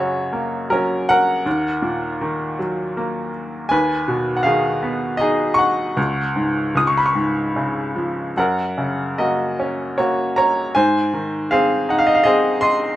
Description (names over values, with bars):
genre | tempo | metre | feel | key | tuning
classical, lyrical solo piano | 72-82 BPM | 3/4 | rubato | F# major | A4 = 439 Hz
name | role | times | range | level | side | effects
bright upright piano | solo | 0.0-13.0 s | C#2 to D#6 | -17 LUFS | equal | none
room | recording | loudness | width
moderate studio reverb, RT60 0.8 s | minimal, uncompressed stereo recording | -17 LUFS | side -14 dB against mid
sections
0.0-13.0 A section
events
none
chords
0.0 F#; 1.5 D#m; 3.7 G#m/D#; 6.0 C#sus4; 6.8 C#; 8.4 F#; 10.8 G#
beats
0.71 | 1.46 2.22 2.98 | 3.71 4.45 5.21 | 5.97 6.75 7.56 | 8.37 9.19 9.99 | 10.76 11.52 12.27